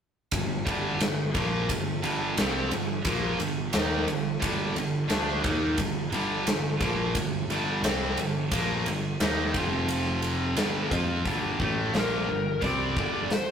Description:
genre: hard rock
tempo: 88 BPM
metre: 4/4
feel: straight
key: G minor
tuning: A4 = 440 Hz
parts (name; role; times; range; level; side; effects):
- high-gain distorted guitar; riff; 0.3-13.3 s; F2 to F4; -28 LUFS; right 1 dB; distortion
- modern bright picked electric bass; bass; 0.3-13.3 s; F1 to F2; -32 LUFS; equal; none
- huge arena drum kit; drums; 0.3-13.5 s; hi-hat, kick drum, ride cymbal, snare drum; -29 LUFS; equal; none
- bluesy overdriven lead guitar; melody; 12.0-13.5 s; Bb4 to D5; -30 LUFS; left 2 dB; distortion
room: moderate studio reverb, RT60 0.6 s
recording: rough rehearsal-room recording, tube saturation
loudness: -25 LUFS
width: side -8 dB against mid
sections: 0.3-11.3 A section; 11.3-13.5 B section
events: none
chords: 0.3 Gm; 9.5 F5; 10.6 G5; 11.3 Gm

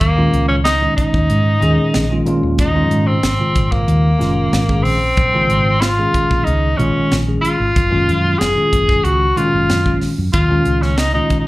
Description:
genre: electric jazz fusion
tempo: 93 BPM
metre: 4/4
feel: straight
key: unclear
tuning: A4 = 440 Hz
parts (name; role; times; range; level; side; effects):
- clear tenor saxophone; melody; 0.0-11.5 s; Bb3 to Ab4; -17 LUFS; left 1 dB; slapback echo
- woody fretless electric bass; bass; 0.0-11.3 s; Gb1 to Ab2; -17 LUFS; equal; none
- crisp fusion drum kit; drums; 0.0-11.5 s; hi-hat, kick drum, snare drum; -20 LUFS; equal; none
- bell-like tine electric piano; accompaniment; 0.2-11.5 s; Bb2 to Ab4; -19 LUFS; equal; medium stereo tremolo, slapback echo
room: light reverb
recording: live gig heard through the venue's PA, club reverb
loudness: -13 LUFS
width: side -18 dB against mid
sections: 0.0-11.5 A section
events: none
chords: 0.0 Eb9sus4; 2.3 Absus4; 5.2 Bbm9; 7.8 Gbmaj9; 10.3 Eb9sus4

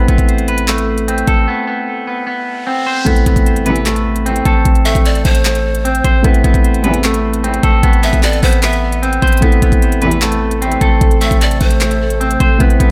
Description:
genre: hip hop, trap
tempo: 151 BPM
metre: 4/4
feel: half-time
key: A minor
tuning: A4 = 440 Hz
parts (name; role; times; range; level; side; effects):
- dark baby grand piano; accompaniment; 0.0-12.9 s; A3 to B4; -24 LUFS; equal; none
- clean electric guitar; arpeggios; 0.0-12.9 s; A3 to C5; -20 LUFS; equal; delay
- warm 808-style bass; bass; 0.0-12.9 s; A1; -18 LUFS; equal; none
- trap drum kit; drums; 0.1-12.9 s; handclaps, hi-hat, kick drum; -17 LUFS; equal; none
- riser and impact; sound effects; 2.2-4.7 s; none; -30 LUFS; equal; none
- dark studio string section; stabs; 3.7-3.9, 6.8-7.1, 10.0-10.3 s; E2 to E3; -24 LUFS; equal; none
- breathy pan flute; second line; 4.9-12.6 s; C5 to E5; -22 LUFS; equal; delay
- airy breathy pad; sustained chords; 9.4-12.9 s; C3 to A4; -26 LUFS; equal; chorus
room: digital ambience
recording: none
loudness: -13 LUFS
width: mono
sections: 0.0-3.1 A section; 3.1-12.9 B section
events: break 1.5-3.1; riser 2.2-3.1; impact 3.1-4.7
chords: 0.0 Amadd9

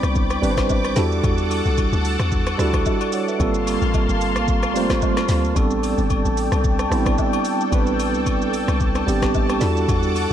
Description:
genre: amapiano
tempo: 111 BPM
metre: 4/4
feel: swing 55% on 16ths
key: A minor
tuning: A4 = 440 Hz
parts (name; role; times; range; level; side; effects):
- tine electric piano; accompaniment; 0.0-10.3 s; G3 to F#5; -22 LUFS; right 3 dB; medium tremolo
- lush unison pad; sustained chords; 0.0-10.3 s; Bb3 to D6; -26 LUFS; left 1 dB; chorus, phaser, sidechain pumping
- deep log drum bass; bass; 0.0-10.3 s; F1 to E2; -23 LUFS; left 1 dB; none
- afro-pop drum kit; drums; 0.0-10.3 s; hi-hat, kick drum, rim click, shaker, snare drum; -24 LUFS; equal; none
- agogo bells and woodblock; percussion; 0.0-10.3 s; none; -31 LUFS; left 10 dB; none
room: light reverb, digital ambience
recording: none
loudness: -17 LUFS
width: side -10 dB against mid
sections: 0.0-10.3 A section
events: none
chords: 0.0 Am11; 1.0 Em11; 3.4 Gm11; 5.6 Am11; 9.6 Em11

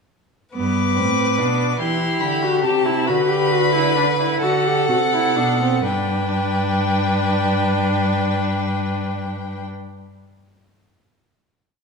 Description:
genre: classical, baroque-style fugue for string quartet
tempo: 40-49 BPM (dotted quarters)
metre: 6/8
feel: straight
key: G major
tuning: A4 = 439 Hz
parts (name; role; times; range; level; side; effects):
- warm viola; accompaniment; 0.5-9.6 s; B3 to G4; -22 LUFS; equal; none
- warm violin; melody; 0.6-9.6 s; F#5 to D6; -24 LUFS; left 3 dB; none
- warm violin; second line; 0.6-9.6 s; G4 to B4; -24 LUFS; left 1 dB; none
- rich cello; bass; 0.6-9.6 s; G2 to E3; -22 LUFS; right 2 dB; none
room: moderate recital hall reverb, RT60 1.5 s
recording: small room ambience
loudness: -17 LUFS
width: side -4 dB against mid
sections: 0.5-5.9 exposition; 5.9-8.9 final chord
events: slowing down 0.5-7.4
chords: 0.5 G; 1.8 Em; 3.1 G/D; 4.4 D7; 5.9 G

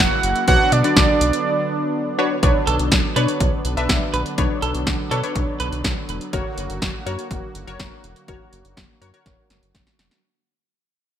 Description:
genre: synth-pop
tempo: 123 BPM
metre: 4/4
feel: straight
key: B harmonic minor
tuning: A4 = 444 Hz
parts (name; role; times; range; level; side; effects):
- fat analog lead; melody; 0.0-2.2 s; D5 to F#5; -20 LUFS; right 4 dB; digital delay
- funky polysynth comp; accompaniment; 0.0-9.8 s; D4 to E5; -25 LUFS; left 2 dB; chorus
- brassy analog pad; sustained chords; 0.0-10.2 s; C#3 to F#4; -27 LUFS; right 1 dB; chorus
- round analog bass; bass; 0.0-10.1 s; E1 to B2; -24 LUFS; equal; none
- punchy analog drum machine; drums; 0.2-10.2 s; hi-hat, kick drum, snare drum; -20 LUFS; equal; none
- twelve-string electric guitar; second line; 2.7-5.7 s; A4 to B4; -27 LUFS; right 5 dB; lush chorus, digital delay
room: light reverb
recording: bright 1980s-style digital production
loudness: -17 LUFS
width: side -10 dB against mid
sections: 0.0-2.4 A section; 2.4-10.2 B section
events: break 1.5-2.4; fade-out 2.4-10.2; drum fill 9.3-10.2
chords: 0.5 Bmadd9; 6.3 F#

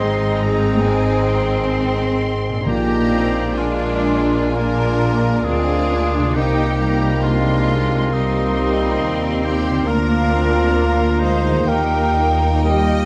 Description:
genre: classical, slow romantic movement for symphony orchestra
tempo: 59-69 BPM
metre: 4/4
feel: rubato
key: unclear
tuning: A4 = 440 Hz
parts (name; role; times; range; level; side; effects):
- rich symphonic violin section; melody; 0.0-13.1 s; F5 to C6; -33 LUFS; equal; none
- clear clarinet; second line; 0.0-13.1 s; C4 to Bb4; -31 LUFS; equal; none
- clear symphonic violin section; second line; 0.0-13.1 s; Eb4 to Eb5; -31 LUFS; equal; none
- mellow hollow concert flute; second line; 0.0-13.1 s; D5 to G5; -29 LUFS; equal; none
- mellow oboe; second line; 0.0-13.1 s; Eb4 to Eb5; -30 LUFS; equal; none
- mellow bassoon; accompaniment; 0.0-13.1 s; Bb3 to C4; -29 LUFS; equal; none
- rich symphonic viola section; accompaniment; 0.0-13.1 s; G3 to G4; -30 LUFS; equal; none
- clear trombone section; sustained chords; 0.0-13.1 s; Bb2 to Ab3; -31 LUFS; equal; none
- mellow French horn section; sustained chords; 0.0-13.1 s; Bb3 to Ab4; -27 LUFS; equal; none
- concert harp; arpeggios; 0.0-13.1 s; Ab2 to Ab4; -30 LUFS; equal; none
- clear symphonic cello section; bass; 0.0-13.1 s; G3 to Eb4; -26 LUFS; equal; none
- rich symphonic double bass section; bass; 0.0-13.1 s; Ab1 to Eb2; -23 LUFS; equal; none
- timpani; percussion; 2.7-4.0 s; Bb2; -30 LUFS; equal; none
room: moderate scoring stage reverb, RT60 1.5 s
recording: vinyl crackle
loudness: -18 LUFS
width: mono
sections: 0.0-13.1 A section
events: none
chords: 0.0 Ab; 2.7 Bb7; 6.3 Cm7; 9.9 Bb/D; 11.7 Eb

